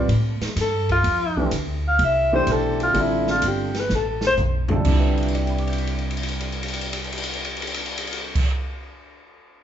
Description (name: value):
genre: modal jazz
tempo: 126 BPM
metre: 4/4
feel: swing 68% on 8ths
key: C major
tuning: A4 = 441 Hz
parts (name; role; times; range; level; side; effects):
- mellow alto saxophone; melody; 0.0-4.3 s; E4 to F5; -21 LUFS; left 1 dB; none
- warm grand piano; accompaniment; 0.0-8.7 s; C3 to D7; -26 LUFS; right 2 dB; none
- upright bass; bass; 0.0-8.4 s; G1 to A2; -25 LUFS; equal; none
- open jazz drum kit; drums; 0.1-8.5 s; crash cymbal, hi-hat, kick drum, ride cymbal, snare drum, toms; -26 LUFS; equal; none
room: moderate large studio reverb, RT60 1.2 s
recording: band playing live in one room, nothing above 7.8 kHz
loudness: -20 LUFS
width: side -10 dB against mid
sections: 0.0-4.9 A section; 4.9-8.7 B section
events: alto saxophone solo 0.0-4.9; drum fill 3.9-4.9, 5.1-8.3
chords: 0.0 Fmaj9; 4.9 Cmaj9